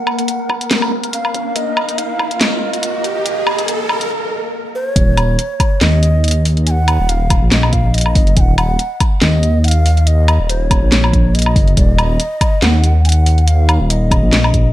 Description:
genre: deep dubstep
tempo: 141 BPM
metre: 4/4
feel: swing 55% on 16ths, half-time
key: Eb minor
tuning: A4 = 441 Hz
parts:
  - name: breathy low ney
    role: melody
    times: 0.0-14.7 s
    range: Db5 to Ab5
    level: -22 LUFS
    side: right 1 dB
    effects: low-pass filter, dub echo
  - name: riser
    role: sound effects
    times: 0.2-4.1 s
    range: none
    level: -23 LUFS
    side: right 1 dB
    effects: none
  - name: wind-like tuned noise texture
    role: texture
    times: 0.0-4.1 s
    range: Bb3 to Bb4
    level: -24 LUFS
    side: left 1 dB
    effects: built-in reverb, analog chorus
  - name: garage drum kit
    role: drums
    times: 0.1-14.6 s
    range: handclaps, hi-hat, snare drum, woodblock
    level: -18 LUFS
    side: equal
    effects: none
  - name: electronic kick drum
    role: drums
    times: 0.5-14.6 s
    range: none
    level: -14 LUFS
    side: equal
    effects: high-pass filter on kick
  - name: dark detuned saw bass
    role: bass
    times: 5.0-14.7 s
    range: Eb1 to Eb2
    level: -12 LUFS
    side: equal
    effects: none
room: light reverb, digital ambience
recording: none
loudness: -12 LUFS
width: side -14 dB against mid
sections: 0.0-5.0 A section; 5.0-14.7 B section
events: build-up 0.0-5.0; filter sweep on ney 0.0-5.0; riser 0.2-4.1; break 4.1-5.0; drop 5.0-14.7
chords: 0.0 N.C.; 5.0 Eb5

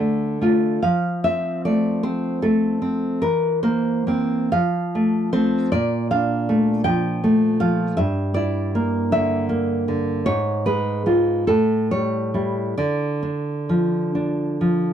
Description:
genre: romantic piece for solo classical guitar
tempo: 42-55 BPM (dotted quarters)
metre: 6/8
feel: rubato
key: D minor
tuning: A4 = 440 Hz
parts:
  - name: nylon-string guitar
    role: solo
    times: 0.0-14.9 s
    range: G2 to G5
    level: -18 LUFS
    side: equal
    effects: none
room: light reverb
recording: dry, close 1970s-style studio recording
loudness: -18 LUFS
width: side -9 dB against mid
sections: 0.0-14.9 A section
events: none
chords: 0.0 Dm; 0.8 F; 3.2 C7/E; 4.5 F; 5.7 Bbmaj7; 8.0 Em7b5/G; 10.3 G#madd11; 11.5 A7; 12.8 Dm

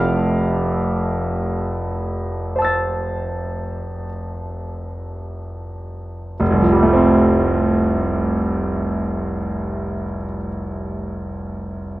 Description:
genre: classical, impressionist solo piano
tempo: 25-29 BPM (dotted quarters)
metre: 9/8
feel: rubato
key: F lydian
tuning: A4 = 438 Hz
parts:
  - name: clear concert grand piano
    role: solo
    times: 0.0-12.0 s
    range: F1 to A6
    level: -18 LUFS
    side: right 1 dB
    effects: none
room: moderate large studio reverb, RT60 1.3 s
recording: worn, warbling old tape, cassette tape, warbly pitch drift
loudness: -18 LUFS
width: side -17 dB against mid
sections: 0.0-6.4 A section; 6.4-12.0 B section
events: slowing down 0.0-6.4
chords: 0.0 Fmaj7; 6.4 Fadd9

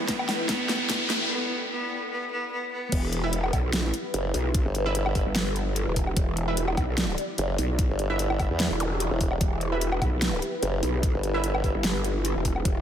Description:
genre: heavy wobble dubstep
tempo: 148 BPM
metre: 4/4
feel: swing 54% on 16ths, half-time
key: E minor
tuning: A4 = 439 Hz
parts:
  - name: clear cello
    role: melody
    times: 0.0-2.9 s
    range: B3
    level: -32 LUFS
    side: left 1 dB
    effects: tape echo
  - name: supersaw pad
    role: sustained chords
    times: 0.0-12.8 s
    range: E3 to B5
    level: -34 LUFS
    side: equal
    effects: ensemble chorus, sidechain pumping, low-pass filter
  - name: riser and zap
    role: sound effects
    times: 0.0-1.3, 8.8-8.9 s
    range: none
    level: -32 LUFS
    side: equal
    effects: none
  - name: granular cloud pad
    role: texture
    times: 0.0-1.3 s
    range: E4 to G5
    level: -40 LUFS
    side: equal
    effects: built-in reverb, sidechain pumping
  - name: dubstep drum kit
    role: drums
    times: 0.1-12.7 s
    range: crash cymbal, hi-hat, snare drum, woodblock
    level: -31 LUFS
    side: equal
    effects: overdrive, small room ambience
  - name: electronic kick drum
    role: drums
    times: 0.1-12.7 s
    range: none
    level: -26 LUFS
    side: equal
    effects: overdrive, small room ambience
  - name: growl bass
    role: bass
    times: 2.9-12.8 s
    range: E1 to B1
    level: -27 LUFS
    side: equal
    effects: chorus, overdrive
  - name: orchestra-hit-like synth stab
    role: stabs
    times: 3.2-11.4 s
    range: E4 to E5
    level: -36 LUFS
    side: right 3 dB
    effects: built-in reverb, tape echo
  - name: formant-sweep wobble bass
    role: bass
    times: 4.1-11.7 s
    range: E1 to E2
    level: -27 LUFS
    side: equal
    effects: chorus, overdrive
room: moderate cathedral reverb, RT60 4.5 s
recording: dreamy mix soaked in reverb, high-pass filter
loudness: -24 LUFS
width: side -9 dB against mid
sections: 0.0-2.9 A section; 2.9-12.8 B section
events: build-up 0.0-2.9; drum fill 0.0-1.3; riser 0.0-1.3; break 1.3-2.9; drop 2.9-12.8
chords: 0.0 Em

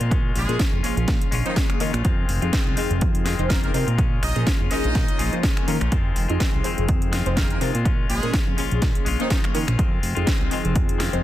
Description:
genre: filtered disco house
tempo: 124 BPM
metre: 4/4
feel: swing 55% on 16ths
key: F minor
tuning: A4 = 441 Hz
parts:
  - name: semi-hollow electric guitar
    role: riff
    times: 0.0-11.2 s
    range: Eb3 to F4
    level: -30 LUFS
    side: left 7 dB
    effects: spring reverb, sidechain pumping
  - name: fat analog bass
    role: bass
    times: 0.0-11.2 s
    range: F1 to Eb3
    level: -24 LUFS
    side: equal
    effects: sidechain pumping
  - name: house drum kit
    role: drums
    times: 0.0-11.2 s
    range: finger snaps, hi-hat, snare drum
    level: -29 LUFS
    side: equal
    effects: overdrive, sidechain pumping on hats, sidechain pumping on cymbals
  - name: electronic kick drum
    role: drums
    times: 0.1-10.9 s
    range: none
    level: -22 LUFS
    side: equal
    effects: overdrive
  - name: brilliant horn section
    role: melody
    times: 0.4-9.4 s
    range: Eb3 to Eb5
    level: -32 LUFS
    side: right 1 dB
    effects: sidechain pumping
  - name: funky polysynth comp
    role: accompaniment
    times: 0.5-11.2 s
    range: F3 to C5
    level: -28 LUFS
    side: left 1 dB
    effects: chorus, phaser, sidechain pumping
room: digital ambience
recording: dense, heavily limited modern master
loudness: -19 LUFS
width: side -14 dB against mid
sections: 0.0-11.2 A section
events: none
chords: 0.1 Bbm7; 2.0 Fm7; 4.0 Bbm7; 5.9 Fm7; 7.9 Bbm7; 9.8 Fm7

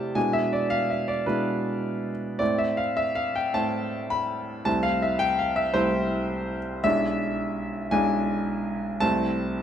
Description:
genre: classical, romantic character piece for solo piano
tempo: 109 BPM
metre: 4/4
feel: rubato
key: A minor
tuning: A4 = 436 Hz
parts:
  - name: clear baby grand piano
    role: solo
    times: 0.0-9.6 s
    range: B1 to B5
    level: -23 LUFS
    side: equal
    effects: none
room: light reverb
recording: close, detailed microphones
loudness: -23 LUFS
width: side -9 dB against mid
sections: 0.0-9.6 A section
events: none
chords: 0.2 E7/B; 2.4 Am; 4.7 Am/C; 6.8 E7/B; 9.0 Am/C

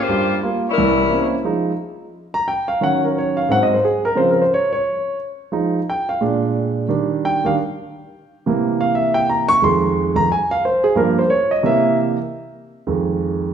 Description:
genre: jazz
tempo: 177 BPM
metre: 4/4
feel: swing 62% on 8ths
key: F minor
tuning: A4 = 441 Hz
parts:
  - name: mellow saxophone section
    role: melody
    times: 0.0-1.3 s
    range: G3 to C5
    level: -19 LUFS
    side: left 4 dB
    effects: none
  - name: warm concert grand piano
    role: accompaniment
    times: 0.1-13.5 s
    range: C2 to Db6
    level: -16 LUFS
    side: right 2 dB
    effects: none
room: wet recital hall reverb, RT60 1.6 s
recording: minimal, uncompressed stereo recording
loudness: -16 LUFS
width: side -8 dB against mid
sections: 0.0-1.5 A section; 1.5-12.3 B section; 12.3-13.5 B section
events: grand piano solo 1.5-13.5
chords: 0.1 Gm7; 0.8 C7b9; 1.5 Fm7; 2.8 Ebm7; 3.5 Ab7; 4.2 Dbmaj7; 5.5 Fm7; 6.2 Bb7; 6.9 Ebmaj7; 8.3 C7; 9.6 Fm7; 11.0 Gm7b5; 11.6 C7; 12.3 Fm7

